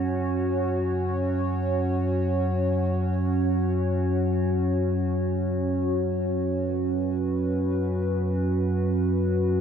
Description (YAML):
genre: dark ambient drone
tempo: free time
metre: none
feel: none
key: unclear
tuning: A4 = 438 Hz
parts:
  - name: dark analog pad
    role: sustained chords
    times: 0.0-9.6 s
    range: C#4 to C#5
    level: -26 LUFS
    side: right 1 dB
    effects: chorus, phaser
  - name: deep rumbling drone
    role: drone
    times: 0.0-9.6 s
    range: F#2 to F#3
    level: -26 LUFS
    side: equal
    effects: built-in reverb, phaser
room: wet huge ambient reverb, RT60 7.9 s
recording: none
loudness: -23 LUFS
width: side -8 dB against mid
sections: 0.0-9.6 A section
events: filter sweep on synth drone 0.0-9.6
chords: 0.0 F#5